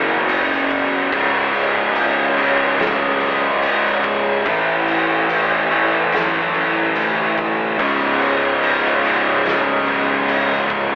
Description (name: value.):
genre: stoner and doom metal.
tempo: 72 BPM.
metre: 4/4.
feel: straight.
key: C# minor.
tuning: A4 = 439 Hz.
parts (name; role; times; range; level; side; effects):
tonewheel organ; sustained chords; 0.0-10.9 s; F#3 to C#5; -28 LUFS; equal; slow rotary speaker.
fuzz guitar; riff; 0.0-10.9 s; C#2 to A3; -21 LUFS; equal; distortion.
high-gain distorted guitar; riff; 0.0-10.9 s; C#2 to A3; -18 LUFS; equal; distortion.
growling fingered electric bass; bass; 0.0-10.9 s; C#1 to F#2; -30 LUFS; equal; overdrive.
oversized low-tuned drum kit; drums; 0.3-10.9 s; crash cymbal, kick drum, snare drum; -19 LUFS; equal; none.
room: light reverb.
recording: band playing live in one room, telephone sound.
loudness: -14 LUFS.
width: side -23 dB against mid.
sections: 0.0-10.9 A section.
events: none.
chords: 0.0 F#5; 1.1 C#5; 4.5 A5; 7.8 C#5.